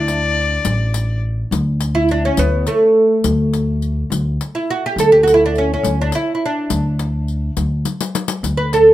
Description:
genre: Arabic maqam ensemble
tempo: 69 BPM (dotted quarters)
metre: 6/8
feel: straight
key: unclear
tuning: A4 = 441 Hz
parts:
  - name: oud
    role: melody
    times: 0.0-8.9 s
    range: A3 to B4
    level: -14 LUFS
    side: right 1 dB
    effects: plate reverb
  - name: rich violin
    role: second line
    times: 0.0-1.2 s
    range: D5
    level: -20 LUFS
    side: left 5 dB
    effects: none
  - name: upright bass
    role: bass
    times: 0.0-8.9 s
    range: A1 to D2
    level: -19 LUFS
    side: equal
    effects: none
  - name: riq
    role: percussion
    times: 0.1-8.9 s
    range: none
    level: -23 LUFS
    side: left 6 dB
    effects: none
room: moderate studio ambience, RT60 0.5 s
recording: close, detailed microphones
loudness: -14 LUFS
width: side -14 dB against mid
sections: 0.0-1.5 A section; 1.5-8.9 B section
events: drum fill 7.9-8.4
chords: none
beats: 0.66 | 1.52 2.38 | 3.25 4.11 | 4.98 5.84 | 6.71 7.58 | 8.44

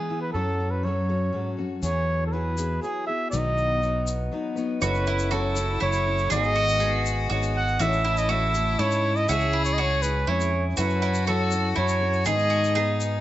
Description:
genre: indie folk with a building arrangement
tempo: 121 BPM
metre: 3/4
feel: straight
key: unclear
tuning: A4 = 440 Hz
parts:
  - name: mellow trumpet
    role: melody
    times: 0.0-13.2 s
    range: G#4 to F#5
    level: -26 LUFS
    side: right 2 dB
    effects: plate reverb
  - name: fingerpicked steel-string acoustic guitar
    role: accompaniment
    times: 0.0-1.8 s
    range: F#2 to E4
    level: -31 LUFS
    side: left 1 dB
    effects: none
  - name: picked steel-string acoustic guitar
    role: accompaniment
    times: 0.0-13.2 s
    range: G#2 to B4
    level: -32 LUFS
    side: left 5 dB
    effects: plate reverb
  - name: fingered electric bass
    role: bass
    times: 0.3-13.2 s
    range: F#1 to G#2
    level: -26 LUFS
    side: equal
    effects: none
  - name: glass harmonica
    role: sustained chords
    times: 1.8-13.2 s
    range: B3 to D#6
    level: -38 LUFS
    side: left 1 dB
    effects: plate reverb
  - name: egg shaker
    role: percussion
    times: 1.8-13.1 s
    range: none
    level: -38 LUFS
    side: left 6 dB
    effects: none
  - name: rich fiddle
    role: second line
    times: 4.8-13.2 s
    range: D#4 to G#4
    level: -31 LUFS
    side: left 6 dB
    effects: plate reverb
  - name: dark upright piano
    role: accompaniment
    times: 4.8-13.2 s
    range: F#1 to F#5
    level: -35 LUFS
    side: right 2 dB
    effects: plate reverb
  - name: bowl-back mandolin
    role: arpeggios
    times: 4.8-13.2 s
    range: E4 to G#4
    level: -31 LUFS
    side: right 6 dB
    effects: plate reverb
room: moderate studio reverb, RT60 0.8 s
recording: nothing above 7.9 kHz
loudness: -22 LUFS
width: side -14 dB against mid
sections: 0.0-4.8 A section; 4.8-13.2 B section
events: none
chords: 0.3 F#m; 1.8 Eadd9; 3.3 B; 4.8 F#m7; 6.3 G#m; 7.8 A; 9.3 C#m; 10.8 F#m7; 12.3 G#m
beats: | 0.34 0.84 1.34 | 1.83 2.33 2.83 | 3.33 3.82 4.32 | 4.82 5.31 5.81 | 6.31 6.80 7.30 | 7.79 8.29 8.79 | 9.29 9.78 10.28 | 10.77 11.27 11.77 | 12.26 12.76

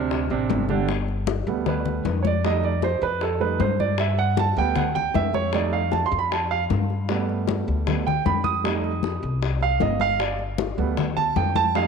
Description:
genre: Afro-Cuban jazz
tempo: 155 BPM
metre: 4/4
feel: straight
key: unclear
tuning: A4 = 440 Hz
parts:
  - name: warm concert grand piano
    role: accompaniment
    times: 0.0-11.9 s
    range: C3 to Eb6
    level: -24 LUFS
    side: right 8 dB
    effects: none
  - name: upright bass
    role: bass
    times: 0.0-11.9 s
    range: G1 to G2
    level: -26 LUFS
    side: left 2 dB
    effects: none
  - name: bongos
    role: percussion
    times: 0.1-11.9 s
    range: none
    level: -31 LUFS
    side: left 13 dB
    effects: none
  - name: congas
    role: percussion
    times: 0.1-11.9 s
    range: none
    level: -28 LUFS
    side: left 11 dB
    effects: none
room: moderate echo chamber reverb, RT60 2.4 s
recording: 1960s-style stereo with parts hard left and right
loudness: -21 LUFS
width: side -6 dB against mid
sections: 0.9-11.9 A section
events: grand piano solo 0.9-11.9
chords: 0.0 D5; 0.9 Gadd9; 2.4 F7; 4.0 Gadd9; 5.5 F7; 7.1 Gadd9; 8.6 F7; 10.2 Gadd9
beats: 0.11 0.49 | 0.88 1.27 1.66 2.05 | 2.44 2.82 3.21 3.60 | 3.99 4.38 4.76 5.15 | 5.54 5.93 6.32 6.70 | 7.09 7.48 7.87 8.26 | 8.65 9.03 9.42 9.81 | 10.20 10.59 10.98 11.37 | 11.75

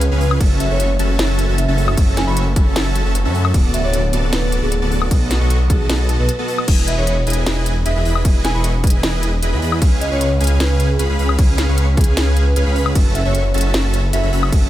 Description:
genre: future bass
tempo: 153 BPM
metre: 4/4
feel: half-time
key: E major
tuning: A4 = 437 Hz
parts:
  - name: airy breathy pad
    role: sustained chords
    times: 0.0-6.7 s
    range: C#3 to F#4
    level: -31 LUFS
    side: equal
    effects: none
  - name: dense compressed supersaw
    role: riff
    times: 0.0-14.7 s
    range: B3 to C#6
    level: -22 LUFS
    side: equal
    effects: sidechain pumping
  - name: wide detuned saw bass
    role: bass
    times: 0.0-14.7 s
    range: D1 to F#2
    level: -17 LUFS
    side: equal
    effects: chorus, sidechain pumping
  - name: trap drum kit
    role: drums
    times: 0.0-14.6 s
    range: crash cymbal, hi-hat, snare drum, woodblock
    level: -24 LUFS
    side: left 1 dB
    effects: studio ambience
  - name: marimba with soft mallets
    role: melody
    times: 0.2-14.2 s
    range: G#4 to B5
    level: -26 LUFS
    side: right 1 dB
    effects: sidechain pumping, tape echo
  - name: electronic kick drum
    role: drums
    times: 0.4-14.6 s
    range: none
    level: -15 LUFS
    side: equal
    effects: studio ambience
room: little or no reverb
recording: none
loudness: -14 LUFS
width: side -14 dB against mid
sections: 0.0-6.7 A section; 6.7-14.7 A section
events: drop 0.0-6.7, 6.7-14.7; break 6.3-6.7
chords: 0.4 F#m7; 3.5 D6; 5.1 B7; 6.7 Emaj7; 9.8 C#7; 13.0 F#m7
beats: 0.01 | 0.41 0.80 1.19 1.58 | 1.97 2.37 2.76 3.15 | 3.54 3.94 4.33 4.72 | 5.11 5.50 5.90 6.29 | 6.68 7.07 7.46 7.86 | 8.25 8.64 9.03 9.43 | 9.82 10.21 10.60 10.99 | 11.39 11.78 12.17 12.56 | 12.96 13.35 13.74 14.13 | 14.52

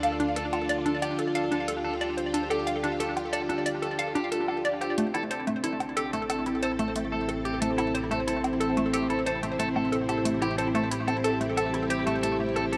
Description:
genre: ambient, sequencer-driven space music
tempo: 91 BPM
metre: 4/4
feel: straight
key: A minor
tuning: A4 = 440 Hz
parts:
  - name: string machine, full ensemble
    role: sustained chords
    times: 0.0-12.8 s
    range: C4 to A4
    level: -32 LUFS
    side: equal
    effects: ensemble chorus
  - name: clean electric guitar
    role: arpeggios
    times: 0.0-12.8 s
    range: G4 to A4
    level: -36 LUFS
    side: equal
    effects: delay
  - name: hollow square pluck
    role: riff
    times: 0.0-12.8 s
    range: A3 to F5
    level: -32 LUFS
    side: equal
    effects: lush chorus, delay
  - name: analog drone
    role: bass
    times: 0.0-12.8 s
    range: A1 to D2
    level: -42 LUFS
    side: equal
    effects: chorus
  - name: electronic hi-hat and woodblock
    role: percussion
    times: 0.0-12.8 s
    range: none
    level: -39 LUFS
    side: equal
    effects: delay
room: wet plate reverb, RT60 2.6 s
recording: none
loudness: -28 LUFS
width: mono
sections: 0.0-12.8 A section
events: fade-in on synth drone 0.0-12.8; filter sweep on synth arpeggio sound 0.0-12.8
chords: 0.0 Dm; 5.0 Am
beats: 0.36 1.02 1.68 | 2.34 3.00 3.66 4.32 | 4.98 5.64 6.30 6.96 | 7.62 8.28 8.93 9.59 | 10.25 10.91 11.57 12.23

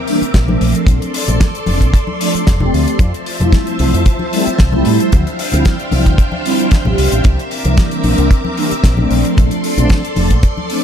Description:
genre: nu-disco, nu disco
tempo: 113 BPM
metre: 4/4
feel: swing 53% on 16ths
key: unclear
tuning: A4 = 441 Hz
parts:
  - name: string machine, full ensemble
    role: sustained chords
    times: 0.0-10.8 s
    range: F3 to D6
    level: -20 LUFS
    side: equal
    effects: ensemble chorus, sidechain pumping
  - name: mellow synth brass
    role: accompaniment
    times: 0.1-10.8 s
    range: E3 to G4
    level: -18 LUFS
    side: equal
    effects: chorus, phaser, sidechain pumping, ping-pong delay
  - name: damped 70s drum kit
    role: drums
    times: 0.1-10.8 s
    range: hi-hat, snare drum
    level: -22 LUFS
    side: left 2 dB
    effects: studio reverb
  - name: fingered electric bass with an envelope filter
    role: bass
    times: 0.2-10.4 s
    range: F1 to A2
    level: -16 LUFS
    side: equal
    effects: none
  - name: kick drum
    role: drums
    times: 0.3-10.5 s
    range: none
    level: -11 LUFS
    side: equal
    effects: studio reverb
  - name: congas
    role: percussion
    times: 0.5-10.7 s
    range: none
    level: -23 LUFS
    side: left 4 dB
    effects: none
room: studio reverb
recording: none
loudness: -11 LUFS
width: side -9 dB against mid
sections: 0.0-10.8 A section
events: filter sweep on analog polysynth 0.0-10.8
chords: 0.0 C9; 0.6 Bbmaj9; 3.0 Fmaj7; 5.1 Dm11; 7.2 C9; 9.1 Bbmaj9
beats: 0.34 | 0.87 1.41 1.94 2.47 | 3.00 3.53 4.06 4.59 | 5.12 5.65 6.18 6.71 | 7.25 7.78 8.31 8.84 | 9.37 9.90 10.43

